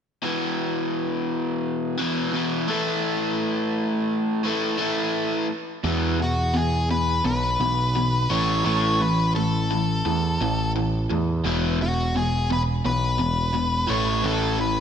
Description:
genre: rock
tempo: 86 BPM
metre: 4/4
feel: straight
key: unclear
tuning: A4 = 439 Hz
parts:
  - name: overdriven electric guitar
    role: riff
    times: 0.2-14.8 s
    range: E2 to A3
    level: -24 LUFS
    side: equal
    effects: none
  - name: growling picked electric bass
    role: bass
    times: 5.8-14.8 s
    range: E1 to E2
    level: -25 LUFS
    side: right 1 dB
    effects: overdrive
  - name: octave-fuzz lead guitar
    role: melody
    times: 6.2-14.8 s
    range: F#4 to C#5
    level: -25 LUFS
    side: left 2 dB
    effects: distortion
room: moderate lush hall reverb, RT60 2.3 s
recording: big arena sound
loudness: -21 LUFS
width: side -8 dB against mid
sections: 0.2-5.9 A section; 5.9-14.8 B section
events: none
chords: 0.2 E5; 2.7 A5; 5.9 E5; 8.3 A5; 11.5 E5; 13.9 A

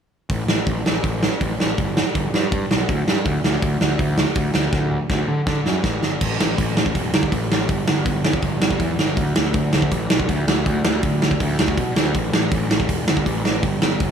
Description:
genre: punk rock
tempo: 162 BPM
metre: 4/4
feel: straight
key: unclear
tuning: A4 = 441 Hz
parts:
  - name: fuzz picked electric bass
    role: bass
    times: 0.3-14.1 s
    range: E1 to D3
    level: -22 LUFS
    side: equal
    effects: overdrive
  - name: big rock drum kit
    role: drums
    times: 0.3-14.1 s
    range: crash cymbal, hi-hat, kick drum, snare drum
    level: -20 LUFS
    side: right 1 dB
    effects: none
room: little or no reverb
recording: none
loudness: -18 LUFS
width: side -7 dB against mid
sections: 0.3-6.2 A section; 6.2-14.1 B section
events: drum fill 4.7-6.2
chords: none

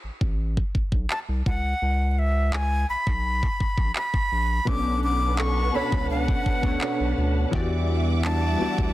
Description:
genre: contemporary R&B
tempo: 84 BPM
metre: 4/4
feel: straight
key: B minor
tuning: A4 = 437 Hz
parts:
  - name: round analog bass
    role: bass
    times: 0.0-8.9 s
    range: A1 to E2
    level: -25 LUFS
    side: equal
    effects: none
  - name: trap drum kit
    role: drums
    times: 0.2-8.9 s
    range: handclaps, kick drum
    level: -26 LUFS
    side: equal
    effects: none
  - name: breathy bright jazz flute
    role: melody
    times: 1.1-8.9 s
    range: E5 to D6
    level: -28 LUFS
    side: equal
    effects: tape echo
  - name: warm analog keys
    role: accompaniment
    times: 4.7-8.9 s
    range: B2 to D5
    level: -28 LUFS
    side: left 2 dB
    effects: chorus
  - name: warm studio string section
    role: sustained chords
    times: 4.7-8.9 s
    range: G3 to D6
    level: -33 LUFS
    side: left 1 dB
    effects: sidechain pumping
  - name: nylon-string guitar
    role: arpeggios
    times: 4.7-8.9 s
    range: E3 to C#5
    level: -31 LUFS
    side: right 7 dB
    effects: none
room: small room ambience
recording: dense, heavily limited modern master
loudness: -22 LUFS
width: side -16 dB against mid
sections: 0.0-8.9 A section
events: none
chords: 0.0 N.C.; 1.5 G#m11 (rootless); 4.7 Bm9; 7.5 Em9

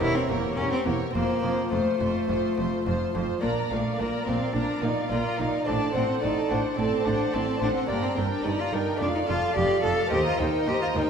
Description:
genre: classical, baroque-style concerto movement with solo episodes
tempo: 108 BPM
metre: 4/4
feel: straight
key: Bb major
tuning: A4 = 440 Hz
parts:
  - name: rich chamber violin section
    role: melody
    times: 0.0-11.1 s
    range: C5 to Bb5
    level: -35 LUFS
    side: left 2 dB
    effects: none
  - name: warm cello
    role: melody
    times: 0.0-11.1 s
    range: A3 to A4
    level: -28 LUFS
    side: left 1 dB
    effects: none
  - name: warm chamber violin section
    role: second line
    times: 0.0-11.1 s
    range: Bb4 to F5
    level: -31 LUFS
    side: left 1 dB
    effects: none
  - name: lute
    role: accompaniment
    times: 0.0-11.1 s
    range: Eb2 to Eb4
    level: -35 LUFS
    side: right 1 dB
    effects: none
  - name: warm chamber viola section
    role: accompaniment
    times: 0.0-11.1 s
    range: F4 to D5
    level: -32 LUFS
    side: right 3 dB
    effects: none
  - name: rich chamber cello section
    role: bass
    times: 0.0-11.0 s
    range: Eb2 to Bb2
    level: -32 LUFS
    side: right 2 dB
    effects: none
  - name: warm chamber double bass section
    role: bass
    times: 0.0-11.0 s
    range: E1 to Eb2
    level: -33 LUFS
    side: right 3 dB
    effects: none
room: wet recital hall reverb, RT60 1.7 s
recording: recorded in a church or concert hall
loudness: -23 LUFS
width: side -7 dB against mid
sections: 0.0-3.4 A section; 3.4-11.1 A section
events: none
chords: 0.0 Edim7; 1.2 F; 3.4 Bb; 5.7 D7/A; 7.9 Gm; 9.0 Dm/F; 10.1 Cm7/Eb

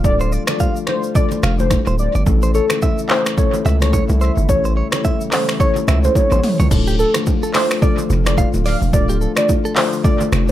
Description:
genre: afrobeats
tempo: 108 BPM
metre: 4/4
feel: swing 58% on 16ths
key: D harmonic minor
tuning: A4 = 439 Hz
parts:
  - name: marimba with soft mallets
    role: accompaniment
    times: 0.0-10.5 s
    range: A3 to A4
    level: -23 LUFS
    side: left 7 dB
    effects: tape echo
  - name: warm analog pad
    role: sustained chords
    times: 0.0-10.5 s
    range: C#3 to F4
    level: -29 LUFS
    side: right 1 dB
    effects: chorus
  - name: hard-hitting 808-style bass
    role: bass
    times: 0.0-10.5 s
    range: D1 to C#2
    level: -17 LUFS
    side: equal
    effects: none
  - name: deep house drum kit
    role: drums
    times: 0.0-10.5 s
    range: crash cymbal, finger snaps, handclaps, hi-hat, kick drum, rim click, shaker, toms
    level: -18 LUFS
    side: equal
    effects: none
  - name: congas and bongos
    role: percussion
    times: 0.0-10.5 s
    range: none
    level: -28 LUFS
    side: right 5 dB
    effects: tape echo
  - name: warm velvety synth lead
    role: melody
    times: 0.1-10.5 s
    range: A4 to F5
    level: -21 LUFS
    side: equal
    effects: chorus, tape echo
  - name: direct-recorded clean electric guitar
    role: riff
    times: 0.2-10.2 s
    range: G4 to F5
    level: -26 LUFS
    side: right 4 dB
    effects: tape echo
room: digital ambience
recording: echo-heavy mix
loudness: -14 LUFS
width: side -13 dB against mid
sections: 0.0-6.7 A section; 6.7-10.5 B section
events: drum fill 6.2-6.7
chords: 0.0 Dm; 2.3 A; 6.7 Dm

